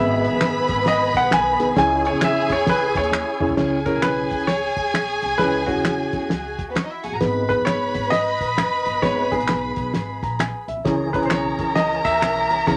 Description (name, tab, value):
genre	uptempo 1960s-style soul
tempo	132 BPM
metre	4/4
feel	swing 63% on 8ths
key	C# dorian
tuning	A4 = 440 Hz
part	clear grand piano	melody	0.0-12.8 s	F#4 to G#5	-26 LUFS	equal	none
part	warm studio violin section	second line	0.0-12.8 s	B3 to B5	-26 LUFS	equal	none
part	mellow reed electric piano	accompaniment	0.0-12.8 s	G#2 to A#5	-26 LUFS	equal	fast tremolo
part	tonewheel organ	sustained chords	0.0-3.6, 10.8-12.8 s	D#3 to G#4	-31 LUFS	equal	chorus vibrato, fast rotary speaker
part	upright bass	bass	0.0-12.8 s	F#1 to E2	-34 LUFS	equal	none
part	cloth-damped thuddy drum kit	drums	0.2-12.8 s	crash cymbal, hi-hat, kick drum, snare drum, toms	-28 LUFS	equal	none
part	finger snaps	percussion	0.4-12.4 s	none	-28 LUFS	equal	none
room	moderate studio ambience, RT60 0.5 s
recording	none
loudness	-21 LUFS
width	mono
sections	0.0-3.6 A section; 3.6-12.8 B section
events	grand piano solo 0.0-3.6; drum fill 3.1-3.6; reed electric piano fill 9.9-10.9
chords	0.0 G#m; 1.8 C#m; 7.2 G#m; 10.9 C#m